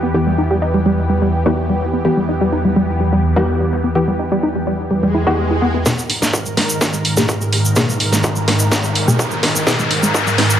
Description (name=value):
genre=melodic techno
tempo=126 BPM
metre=4/4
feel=straight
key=G# harmonic minor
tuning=A4 = 440 Hz
part: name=lush unison pad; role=sustained chords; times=0.0-10.6 s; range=E2 to A#4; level=-18 LUFS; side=equal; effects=chorus, phaser, sidechain pumping
part: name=tight sequenced synth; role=arpeggios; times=0.0-10.4 s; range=G3 to G4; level=-20 LUFS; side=equal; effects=chorus, sidechain pumping, dub echo
part: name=filtered dub chord stab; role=stabs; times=0.0-10.6 s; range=B2 to G#4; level=-20 LUFS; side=left 1 dB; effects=chorus, sidechain pumping, dub echo
part: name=swell and riser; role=sound effects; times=5.1-10.6 s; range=none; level=-23 LUFS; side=left 1 dB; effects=none
part: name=electronic kick drum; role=drums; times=5.9-10.2 s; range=none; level=-23 LUFS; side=equal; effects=distortion, high-pass filter on kick, high-pass filter on room
part: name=techno drum kit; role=drums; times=5.9-10.5 s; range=hi-hat, snare drum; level=-18 LUFS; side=equal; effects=high-pass filter on snare, sidechain pumping on hats, high-pass filter on hats, high-pass filter on room
part: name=tube shaker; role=percussion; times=5.9-10.6 s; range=none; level=-23 LUFS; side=right 2 dB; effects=none
room=moderate lush hall reverb, RT60 1.7 s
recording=none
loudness=-14 LUFS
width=side -10 dB against mid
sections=0.0-5.9 A section; 5.9-10.6 B section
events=swell 5.1-5.9; build-up 5.9-10.6; drum fill 5.9-10.6; riser 5.9-10.6; filter sweep on synth arpeggio sound 5.9-10.6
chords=0.0 Em; 5.9 G#madd9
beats=| 0.14 0.62 1.10 1.57 | 2.05 2.52 3.00 3.48 | 3.95 4.43 4.91 5.38 | 5.86 6.33 6.81 7.29 | 7.76 8.24 8.72 9.19 | 9.67 10.14